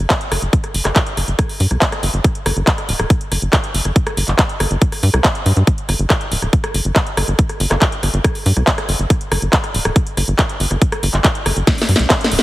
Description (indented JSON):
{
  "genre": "psychedelic trance",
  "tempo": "140 BPM",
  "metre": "4/4",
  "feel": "straight",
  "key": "unclear",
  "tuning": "A4 = 439 Hz",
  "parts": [
    { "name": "tight sequencer bass", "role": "bass", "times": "0.0-12.4 s", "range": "D1 to G2", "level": "-17 LUFS", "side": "equal", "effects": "none" },
    { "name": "drum and bass drum kit", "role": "drums", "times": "0.1-12.4 s", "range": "handclaps, hi-hat, rim click, snare drum", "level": "-18 LUFS", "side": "equal", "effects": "none" },
    { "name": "electronic kick drum", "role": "drums", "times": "0.1-12.2 s", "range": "none", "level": "-16 LUFS", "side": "equal", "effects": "none" }
  ],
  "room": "light reverb",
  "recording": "heavily compressed radio sound, multiband compression",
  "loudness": "-14 LUFS",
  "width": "side -17 dB against mid",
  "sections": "0.0-12.4 A section",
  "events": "drum fill 11.7-12.4",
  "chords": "none",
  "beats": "0.10 | 0.53 0.96 1.39 1.82 | 2.24 2.67 3.10 3.53 | 3.96 4.39 4.82 5.24 | 5.67 6.10 6.53 6.96 | 7.39 7.82 8.24 8.67 | 9.10 9.53 9.96 10.39 | 10.82 11.24 11.67 12.10"
}